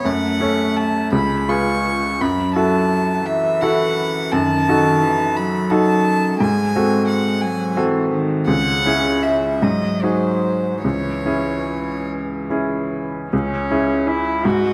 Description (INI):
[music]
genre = classical, slow romantic movement for piano trio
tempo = 47-60 BPM (dotted quarters)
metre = 6/8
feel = rubato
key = C# minor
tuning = A4 = 439 Hz
[part]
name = rich violin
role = melody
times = 0.0-14.7 s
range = B#4 to C#6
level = -24 LUFS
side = equal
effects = none
[part]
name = rich cello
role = second line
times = 0.0-14.7 s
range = C#3 to F#4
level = -25 LUFS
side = equal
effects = none
[part]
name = bright baby grand piano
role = accompaniment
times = 0.0-14.7 s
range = C#2 to C#5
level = -22 LUFS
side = equal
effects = none
[sound]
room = moderate concert hall reverb, RT60 2.1 s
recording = close, detailed microphones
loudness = -19 LUFS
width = mono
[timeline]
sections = 0.0-13.3 A section; 13.3-14.7 A section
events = none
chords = 0.1 F#m; 1.1 C#7; 2.2 F#m7; 4.3 D#dim/F#; 6.4 G#7b9; 8.5 C#m; 9.6 G#7; 10.8 C#m